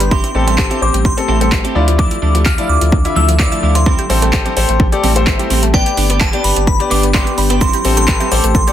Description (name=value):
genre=dance-pop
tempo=128 BPM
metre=4/4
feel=straight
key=A minor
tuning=A4 = 439 Hz
part: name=glassy synth bell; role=melody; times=0.0-8.7 s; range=G5 to F6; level=-20 LUFS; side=equal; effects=chorus, phaser, tape echo
part: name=clear baby grand piano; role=accompaniment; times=0.0-8.7 s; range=C4 to A5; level=-20 LUFS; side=left 6 dB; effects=sidechain pumping
part: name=glassy FM pad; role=sustained chords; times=0.0-8.7 s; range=D3 to E5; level=-23 LUFS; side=equal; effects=ensemble chorus, built-in reverb, sidechain pumping
part: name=mallet-like synth pluck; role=arpeggios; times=0.0-8.7 s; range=F3 to B4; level=-24 LUFS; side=right 1 dB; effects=chorus, phaser, sidechain pumping, tape echo
part: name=twelve-string electric guitar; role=riff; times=0.0-8.7 s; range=F3 to G4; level=-22 LUFS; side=right 6 dB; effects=analog chorus
part: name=saturated sub bass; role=bass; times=0.0-8.7 s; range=G1 to D2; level=-16 LUFS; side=equal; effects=sidechain pumping
part: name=pop drum kit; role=drums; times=0.0-8.7 s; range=handclaps, hi-hat, kick drum, shaker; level=-16 LUFS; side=equal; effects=overdrive
part: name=group handclap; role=percussion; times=6.2-8.2 s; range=none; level=-32 LUFS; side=right 2 dB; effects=none
room=light reverb, digital ambience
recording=dense, heavily limited modern master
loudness=-11 LUFS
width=side -11 dB against mid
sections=0.0-8.7 A section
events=grand piano fill 4.8-5.7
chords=0.1 Am7; 1.8 Dmadd9; 3.9 Am7; 5.7 G; 7.6 Am7